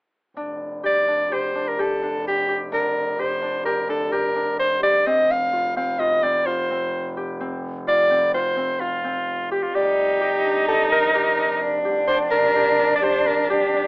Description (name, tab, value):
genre	contemporary instrumental, chamber music in an uneven meter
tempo	128 BPM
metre	5/4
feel	straight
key	unclear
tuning	A4 = 443 Hz
part	Celtic harp	arpeggios	0.4-13.9 s	C4 to D5	-26 LUFS	left 1 dB	none
part	rich double bass	bass	0.4-13.9 s	F1	-34 LUFS	equal	none
part	warm soprano saxophone	melody	0.9-13.9 s	F4 to F5	-20 LUFS	equal	none
part	warm cello	second line	9.7-13.9 s	D4 to Eb4	-21 LUFS	equal	none
room	moderate studio reverb, RT60 0.8 s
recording	telephone sound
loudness	-18 LUFS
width	side -30 dB against mid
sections	0.4-9.7 A section; 9.7-13.9 A section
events	none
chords	0.4 Fsus2; 5.1 F5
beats	| 0.37 0.84 1.31 1.78 2.25 | 2.72 3.19 3.65 4.12 4.59 | 5.06 5.53 6.00 6.47 6.93 | 7.40 7.87 8.34 8.81 9.28 | 9.74 10.21 10.68 11.15 11.62 | 12.09 12.56 13.03 13.50